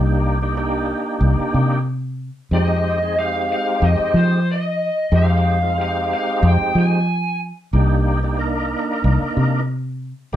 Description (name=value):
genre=straight-eighth soul blues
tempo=92 BPM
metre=4/4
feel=swing 54% on 16ths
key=C minor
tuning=A4 = 439 Hz
part: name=tonewheel organ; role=accompaniment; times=0.0-10.4 s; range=Ab3 to Bb4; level=-22 LUFS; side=right 1 dB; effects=slow rotary speaker, overdrive, chorus vibrato
part: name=fingered electric bass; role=bass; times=0.0-10.4 s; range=C2 to F3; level=-18 LUFS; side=equal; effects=none
part: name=lead guitar through a small cranked amp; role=melody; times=2.5-7.4 s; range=C5 to Ab5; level=-21 LUFS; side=left 1 dB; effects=overdrive
room=moderate studio reverb, RT60 0.6 s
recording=band playing live in one room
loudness=-16 LUFS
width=side -12 dB against mid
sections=0.0-10.4 A section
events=none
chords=0.0 Cm7; 2.5 Fm7; 7.7 Cm7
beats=0.56 1.22 1.87 | 2.52 3.17 3.82 4.47 | 5.12 5.78 6.43 7.08 | 7.73 8.38 9.04 9.69 | 10.34